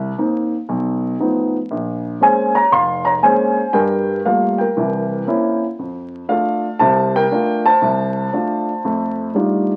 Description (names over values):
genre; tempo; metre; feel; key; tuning
solo jazz; 118 BPM; 4/4; swing 67% on 8ths; F major; A4 = 444 Hz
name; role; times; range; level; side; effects
dark concert grand piano; solo; 0.0-9.7 s; F1 to C6; -18 LUFS; equal; none
room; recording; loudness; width
moderate studio reverb, RT60 0.9 s; very old 78 rpm record, vinyl crackle; -18 LUFS; mono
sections
0.0-9.8 A section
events
none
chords
0.0 Cm7; 0.7 B7#11; 1.7 Bbm9; 3.7 Gm9; 4.8 C7b9; 5.8 F6; 8.8 F13